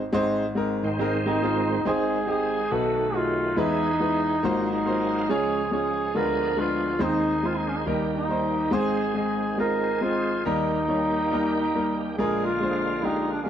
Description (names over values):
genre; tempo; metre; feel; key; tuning
uptempo gospel; 139 BPM; 4/4; swing 64% on 8ths; Ab major; A4 = 441 Hz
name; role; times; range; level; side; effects
warm grand piano; accompaniment; 0.0-13.5 s; Ab1 to Eb5; -26 LUFS; left 1 dB; none
bright tonewheel organ; sustained chords; 0.8-13.5 s; Ab2 to Ab4; -31 LUFS; right 3 dB; slow rotary speaker, chorus vibrato
mellow electric guitar; second line; 1.0-1.8 s; F4 to C5; -34 LUFS; right 6 dB; none
warm duduk; melody; 1.3-13.5 s; Db4 to Bb4; -25 LUFS; right 1 dB; none
room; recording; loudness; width
moderate echo chamber reverb, RT60 1.3 s; none; -22 LUFS; side -9 dB against mid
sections
0.0-1.9 A section; 1.9-13.5 B section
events
tonewheel organ solo 0.0-1.9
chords
0.0 Ab; 2.7 B7; 3.6 E; 4.4 Ab13; 5.3 Db; 6.2 Ddim7; 7.0 Ab/Eb; 7.9 Eb; 8.7 Ab; 10.5 Eb; 12.2 Bb7